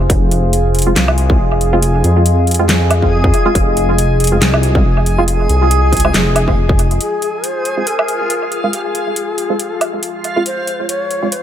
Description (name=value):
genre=deep dubstep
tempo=139 BPM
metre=4/4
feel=swing 56% on 16ths, half-time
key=F minor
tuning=A4 = 440 Hz
part: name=deep dark ambient pad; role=sustained chords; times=0.0-11.4 s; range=F4 to Ab5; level=-21 LUFS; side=equal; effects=chorus, built-in reverb
part: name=dark detuned saw bass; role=bass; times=0.0-7.0 s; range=F1 to F2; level=-14 LUFS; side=equal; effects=none
part: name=dubstep drum kit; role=drums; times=0.1-11.4 s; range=handclaps, hi-hat, snare drum, woodblock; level=-18 LUFS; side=right 1 dB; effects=analog delay
part: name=electronic kick drum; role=drums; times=0.1-6.8 s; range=none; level=-15 LUFS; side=equal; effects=distortion
part: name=backwards swelling texture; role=texture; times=1.1-11.4 s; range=F4 to Ab4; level=-21 LUFS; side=left 1 dB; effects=built-in reverb
part: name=filtered dub chord stab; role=stabs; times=0.9-11.3 s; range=Ab3 to F4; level=-20 LUFS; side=right 2 dB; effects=wide subtle chorus, analog delay
part: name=breathy mellow long shakuhachi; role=melody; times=7.0-11.4 s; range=Ab4 to Db5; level=-20 LUFS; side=left 2 dB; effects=dub echo
room=light reverb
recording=echo-heavy mix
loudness=-12 LUFS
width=side -10 dB against mid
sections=0.0-7.0 A section; 7.0-11.4 B section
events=filter sweep on ambient pad 7.0-11.4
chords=0.0 Fm